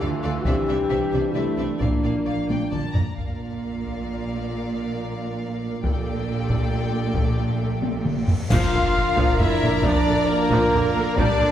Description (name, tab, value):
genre	cinematic, epic orchestral film score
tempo	135 BPM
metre	3/4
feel	straight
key	unclear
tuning	A4 = 441 Hz
part	warm symphonic violin section	melody	0.0-11.5 s	Bb4 to Bb5	-33 LUFS	left 3 dB	none
part	rich symphonic violin section	second line	0.0-11.5 s	A4 to Bb5	-35 LUFS	left 3 dB	none
part	rich symphonic viola section	accompaniment	0.0-11.5 s	D3 to Bb4	-31 LUFS	right 1 dB	none
part	mellow French horn section	sustained chords	0.0-11.5 s	Bb3 to G4	-28 LUFS	left 2 dB	none
part	warm trombone section	sustained chords	0.0-11.5 s	Bb2 to D4	-29 LUFS	right 3 dB	none
part	rich studio double bass section	bass	0.0-11.5 s	Bb1 to D2	-29 LUFS	right 2 dB	none
part	rich symphonic cello section	bass	0.0-11.5 s	Bb2 to D3	-30 LUFS	right 2 dB	none
part	taiko ensemble	drums	0.5-11.5 s	none	-25 LUFS	left 1 dB	none
part	cymbal swell, clash cymbals and concert bass drum	percussion	5.8-9.4 s	none	-31 LUFS	equal	none
part	cymbal swell and sub drop	sound effects	8.1-9.8 s	none	-34 LUFS	equal	none
part	flute section	second line	8.5-11.5 s	Bb4 to F5	-28 LUFS	left 3 dB	none
part	dark trumpet	stabs	8.5-11.5 s	Bb3 to F4	-27 LUFS	right 2 dB	none
room	wet scoring stage reverb, RT60 2.2 s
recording	heard from further back in the room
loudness	-20 LUFS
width	side -10 dB against mid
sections	0.0-3.2 A section; 3.2-8.5 B section; 8.5-11.5 C section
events	drum fill 2.5-3.2, 7.8-8.5; cymbal swell 8.1-8.5; band accent 8.5-9.0; impact 8.5-9.8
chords	0.5 Cadd9; 1.8 Bb; 5.8 Gmadd9/Bb; 8.5 Bb